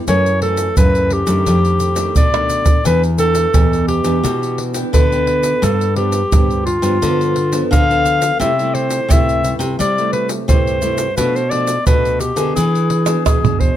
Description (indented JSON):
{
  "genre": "samba and choro",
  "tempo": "86 BPM",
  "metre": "4/4",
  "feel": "straight",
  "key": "unclear",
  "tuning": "A4 = 444 Hz",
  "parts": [
    { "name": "nylon-string guitar", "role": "accompaniment", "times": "0.0-13.8 s", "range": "F2 to G#4", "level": "-22 LUFS", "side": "right 2 dB", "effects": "none" },
    { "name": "clear clarinet", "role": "melody", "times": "0.1-13.8 s", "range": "F4 to F5", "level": "-17 LUFS", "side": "left 1 dB", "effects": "none" },
    { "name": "nylon-string guitar", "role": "bass", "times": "0.1-13.8 s", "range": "E2 to G3", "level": "-19 LUFS", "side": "left 1 dB", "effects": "none" },
    { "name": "egg shaker, surdo, pandeiro and tamborim", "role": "percussion", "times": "0.1-13.8 s", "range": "none", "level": "-16 LUFS", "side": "right 1 dB", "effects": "none" }
  ],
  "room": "light reverb",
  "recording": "close, detailed microphones",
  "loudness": "-13 LUFS",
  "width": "side -11 dB against mid",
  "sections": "0.0-13.8 A section",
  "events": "drum fill 2.3-2.9, 13.1-13.8",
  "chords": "0.1 F#m7; 1.5 F13; 2.9 Em7; 5.6 G7; 8.4 C6; 11.2 Bm7b5; 12.6 E7"
}